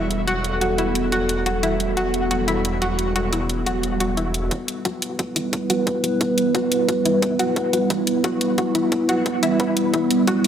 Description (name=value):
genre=dark technical drum and bass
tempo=177 BPM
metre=4/4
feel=straight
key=E minor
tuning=A4 = 441 Hz
part: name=dark analog pad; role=sustained chords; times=0.0-10.5 s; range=G3 to D5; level=-21 LUFS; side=right 1 dB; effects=chorus, phaser, sidechain pumping
part: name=snarling distorted saw bass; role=bass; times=0.0-4.5 s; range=E1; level=-26 LUFS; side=equal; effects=distortion, tube saturation, sidechain pumping
part: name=electronic hi-hat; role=drums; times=0.1-10.5 s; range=none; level=-26 LUFS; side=left 1 dB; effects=overdrive, high-pass filter on hats, high-pass filter on cymbals
part: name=analog pluck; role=arpeggios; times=0.3-10.3 s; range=E4 to B4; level=-25 LUFS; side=left 1 dB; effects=chorus, cassette tape, sidechain pumping, diffuse ambient delay
part: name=electronic kick drum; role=drums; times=4.5-10.3 s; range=none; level=-27 LUFS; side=equal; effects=overdrive, high-pass filter on kick
room=wet lush hall reverb, RT60 1.8 s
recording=dreamy mix soaked in reverb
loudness=-19 LUFS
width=side -9 dB against mid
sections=0.0-4.5 A section; 4.5-10.5 B section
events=filter sweep on analog synth pad 0.0-4.5; build-up 4.5-10.5; filter sweep on synth arpeggio sound 4.5-10.5; drum fill 9.9-10.5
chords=0.0 Em